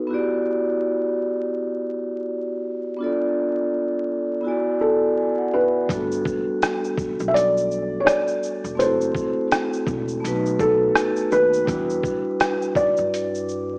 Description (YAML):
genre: lo-fi hip hop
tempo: 83 BPM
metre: 4/4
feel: swing 58% on 16ths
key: G major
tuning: A4 = 439 Hz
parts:
  - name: vibraphone with medium mallets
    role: accompaniment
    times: 0.0-13.8 s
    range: G3 to G#5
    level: -23 LUFS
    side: equal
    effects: cassette tape
  - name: felt-muted upright piano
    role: melody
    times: 4.8-13.8 s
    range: A4 to E5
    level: -21 LUFS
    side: equal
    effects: cassette tape
  - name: upright bass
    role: bass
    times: 5.9-13.8 s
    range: E1 to G2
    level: -31 LUFS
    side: equal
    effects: none
  - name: trip hop sampler-style drum kit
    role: drums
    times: 5.9-13.7 s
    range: hi-hat, kick drum, rim click, shaker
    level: -25 LUFS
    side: equal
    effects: cassette tape
room: light reverb, small room ambience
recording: home recording on cassette, vinyl crackle, small speaker sound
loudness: -19 LUFS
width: side -33 dB against mid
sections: 0.0-5.9 A section; 5.9-13.8 B section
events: vibraphone fill 4.8-5.9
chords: 0.1 Em7; 3.0 Bm7b5; 4.4 E7; 5.9 Gmaj7; 8.8 F#m7b5; 10.2 B7; 11.7 Em7